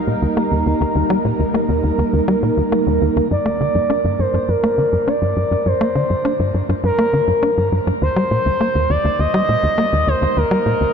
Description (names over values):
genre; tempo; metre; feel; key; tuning
ambient, sequencer-driven space music; 102 BPM; 4/4; straight; G minor; A4 = 440 Hz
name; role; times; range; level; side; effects
sweeping resonant pad; sustained chords; 0.0-10.9 s; G3 to Bb4; -22 LUFS; right 2 dB; lush chorus, shimmer reverb
tight sequencer bass; riff; 0.1-10.9 s; Eb2 to D4; -18 LUFS; equal; ping-pong delay
expressive portamento lead; melody; 3.3-10.9 s; Bb4 to Eb5; -18 LUFS; equal; chorus, shimmer reverb, ping-pong delay
room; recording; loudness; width
wet huge ambient reverb, RT60 7.1 s; none; -15 LUFS; side -6 dB against mid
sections
0.0-3.3 A section; 3.3-10.9 B section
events
filter sweep on analog synth bass 0.0-3.3; fade-in on analog synth pad 3.3-10.9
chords
0.0 Eb; 3.3 Gm7; 8.0 Eb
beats
0.37 | 0.96 1.55 2.13 2.72 | 3.31 3.90 4.49 5.08 | 5.66 6.25 6.84 7.43 | 8.02 8.61 9.19 9.78 | 10.37